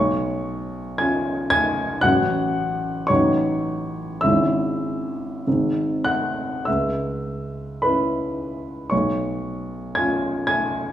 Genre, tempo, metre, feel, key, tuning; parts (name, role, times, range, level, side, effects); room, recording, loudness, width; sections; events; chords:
classical, romantic nocturne for solo piano; 48-58 BPM; 4/4; rubato; C# minor; A4 = 440 Hz
warm grand piano; solo; 0.0-10.9 s; G#1 to G#6; -20 LUFS; equal
wet recital hall reverb, RT60 1.7 s; small room reverb; -20 LUFS; side -11 dB against mid
0.0-10.9 A section
0.0 C#7/B; 2.0 F#m/A; 3.1 D#m7b5/A; 4.2 C#m/G#; 5.5 G#; 6.7 C#m; 8.9 C#7/B